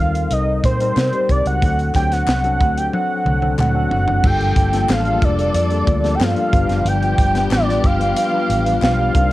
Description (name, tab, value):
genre	polished 1980s jazz-funk pop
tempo	92 BPM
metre	4/4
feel	straight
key	unclear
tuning	A4 = 438 Hz
part	fat analog lead	melody	0.0-9.3 s	C5 to G5	-19 LUFS	right 1 dB	chorus, cassette tape, plate reverb
part	tine electric piano	accompaniment	0.0-9.3 s	F#3 to D5	-23 LUFS	left 6 dB	medium stereo tremolo, wide subtle chorus, plate reverb
part	vintage muted fingered electric bass	bass	0.0-9.3 s	F1 to C3	-20 LUFS	equal	none
part	crisp fusion drum kit	drums	0.2-9.3 s	crash cymbal, hi-hat, kick drum, snare drum, toms	-20 LUFS	equal	cassette tape
part	group handclap	percussion	1.0-9.0 s	none	-35 LUFS	left 8 dB	none
part	warm studio string section	sustained chords	4.2-9.3 s	C3 to A4	-27 LUFS	left 1 dB	plate reverb
room	light reverb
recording	home recording on cassette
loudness	-15 LUFS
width	side -16 dB against mid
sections	0.0-4.2 A section; 4.2-9.3 B section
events	drum fill 2.9-4.2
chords	0.0 Cm7; 1.6 D7; 4.2 Gm9; 6.5 G7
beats	0.31 0.97 | 1.62 2.28 2.93 3.58 | 4.24 4.89 5.55 6.20 | 6.86 7.51 8.16 8.82